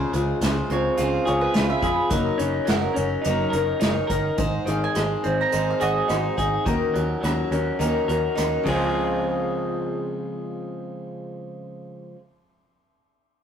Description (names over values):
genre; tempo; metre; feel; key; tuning
folk rock and heartland rock; 105 BPM; 4/4; straight; Db major; A4 = 441 Hz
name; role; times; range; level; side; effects
picked steel-string acoustic guitar; accompaniment; 0.0-12.2 s; Db3 to Db5; -27 LUFS; left 4 dB; none
electric guitar through a small old amp; riff; 0.0-12.2 s; Ab2 to Bb4; -25 LUFS; right 1 dB; none
picked electric bass; bass; 0.0-12.0 s; Gb1 to F2; -28 LUFS; equal; none
unplugged drum kit; drums; 0.1-8.8 s; hi-hat, kick drum, ride cymbal, rim click, snare drum; -28 LUFS; equal; none
mandolin; second line; 0.7-7.5 s; Gb4 to Cb6; -29 LUFS; right 6 dB; none
room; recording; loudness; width
moderate stone room reverb, RT60 1.1 s; rough rehearsal-room recording, warm saturation; -21 LUFS; side -8 dB against mid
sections
0.0-8.9 A section; 8.9-11.2 B section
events
mandolin solo 0.0-8.9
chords
0.0 Dbmaj7; 2.1 Gb6; 4.4 Ab; 6.7 Ebm7; 8.7 Dbmaj7